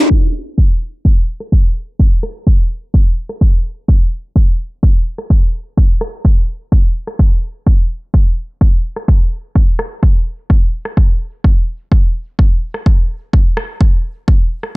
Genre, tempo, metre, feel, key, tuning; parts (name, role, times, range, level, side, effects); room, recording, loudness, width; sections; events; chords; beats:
EDM; 127 BPM; 4/4; straight
electronic kick drum; drums; 0.1-14.4 s; -10 LUFS; equal
electronic rim click; drums; 1.4-14.7 s; -19 LUFS; left 1 dB; low-pass filter on hats, low-pass filter on snare, low-pass filter on cymbals, low-pass filter on perc
digital ambience; low-pass filter; -12 LUFS; side -23 dB against mid
0.1-14.8 A section
filter sweep 0.1-14.8
| 0.10 0.58 1.05 1.52 | 1.99 2.47 2.94 3.41 | 3.88 4.36 4.83 5.30 | 5.77 6.25 6.72 7.19 | 7.66 8.14 8.61 9.08 | 9.55 10.03 10.50 10.97 | 11.44 11.92 12.39 12.86 | 13.33 13.80 14.28